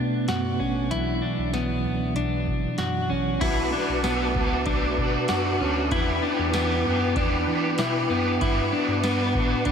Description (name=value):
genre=dream pop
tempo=96 BPM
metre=4/4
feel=straight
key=B minor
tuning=A4 = 442 Hz
part: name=mellow tonewheel organ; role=sustained chords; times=0.0-9.7 s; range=B2 to D6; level=-28 LUFS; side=right 1 dB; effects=chorus vibrato, fast rotary speaker
part: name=clean electric guitar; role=arpeggios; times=0.0-9.7 s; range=B3 to F#4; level=-26 LUFS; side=left 1 dB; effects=wide subtle chorus, ping-pong delay
part: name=mellow tine electric piano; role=bass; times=0.0-9.7 s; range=A1 to E3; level=-30 LUFS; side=equal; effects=phaser
part: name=booming analog drum machine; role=drums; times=0.3-9.7 s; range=crash cymbal, hi-hat, kick drum, ride cymbal, snare drum, tambourine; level=-31 LUFS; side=equal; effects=none
part: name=crunchy overdriven guitar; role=accompaniment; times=3.4-9.7 s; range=B2 to G4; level=-28 LUFS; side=right 2 dB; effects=harmonic tremolo, ensemble chorus
room=wet huge ambient reverb, RT60 7.6 s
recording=dreamy mix soaked in reverb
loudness=-22 LUFS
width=side -7 dB against mid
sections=0.0-3.4 A section; 3.4-9.7 B section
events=none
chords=0.0 Bm9; 3.4 Bm7; 5.9 Em7; 8.4 Gmaj7